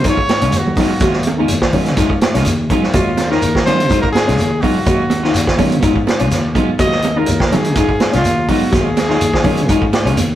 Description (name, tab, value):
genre	afrobeat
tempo	124 BPM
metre	4/4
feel	straight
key	Eb minor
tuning	A4 = 444 Hz
part	clear trumpet	melody	0.0-10.1 s	F4 to Eb5	-19 LUFS	equal	none
part	fingered electric bass	bass	0.0-10.4 s	Db2 to Eb3	-19 LUFS	left 1 dB	none
part	vintage drum kit	drums	0.0-10.3 s	hi-hat, kick drum, snare drum	-18 LUFS	equal	none
part	shekere	percussion	0.0-10.3 s	none	-25 LUFS	left 1 dB	none
part	felt-muted upright piano	arpeggios	0.1-10.2 s	Db4 to Gb4	-20 LUFS	left 4 dB	none
part	electric guitar at the edge of break-up	stabs	0.1-10.2 s	Gb3 to F4	-23 LUFS	right 4 dB	none
part	congas	percussion	0.3-10.3 s	none	-21 LUFS	right 3 dB	none
room	moderate stone room reverb, RT60 1.2 s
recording	rough rehearsal-room recording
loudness	-12 LUFS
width	side -12 dB against mid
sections	0.0-10.4 A section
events	none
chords	0.0 Ebm11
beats	0.05 0.53 | 1.01 1.50 1.98 2.46 | 2.94 3.42 3.90 4.38 | 4.87 5.35 5.83 6.31 | 6.79 7.28 7.76 8.24 | 8.72 9.21 9.69 10.17